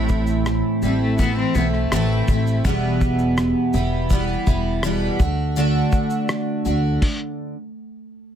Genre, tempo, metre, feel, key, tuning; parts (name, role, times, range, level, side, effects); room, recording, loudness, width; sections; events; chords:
acoustic pop; 82 BPM; 4/4; straight; A4 = 440 Hz
picked steel-string acoustic guitar; accompaniment; 0.0-7.5 s; E2 to F#4; -21 LUFS; right 1 dB; double-tracked left and right
upright bass; bass; 0.0-7.0 s; E1 to D2; -23 LUFS; equal
cloth-damped thuddy drum kit; drums; 0.1-7.2 s; crash cymbal, kick drum, rim click, shaker; -21 LUFS; equal
warm cello; second line; 0.8-2.6 s; G3 to C4; -26 LUFS; left 5 dB
moderate studio ambience, RT60 0.5 s; -18 LUFS; side -9 dB against mid
0.0-8.4 A section
stop 7.0-8.4
0.0 Am; 2.7 Em; 5.2 D